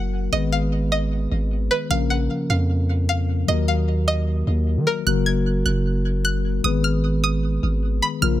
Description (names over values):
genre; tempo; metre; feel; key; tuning
hip hop, trap; 152 BPM; 4/4; half-time; unclear; A4 = 440 Hz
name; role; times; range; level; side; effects
string-like resonator pluck; melody; 0.0-8.4 s; A#4 to G#6; -25 LUFS; right 1 dB; chorus, tape echo
mellow tine electric piano; accompaniment; 0.0-8.4 s; C#3 to B4; -24 LUFS; moving between left 8 dB and right 2 dB; auto-pan
long sustained 808-style bass; bass; 0.0-8.4 s; F#1 to D#3; -22 LUFS; equal; none
room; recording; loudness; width
little or no reverb; none; -19 LUFS; side -14 dB against mid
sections
0.0-5.1 A section; 5.1-8.4 B section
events
none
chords
0.3 G#m; 1.9 A#m; 3.5 D#m; 5.1 F#; 6.6 G#m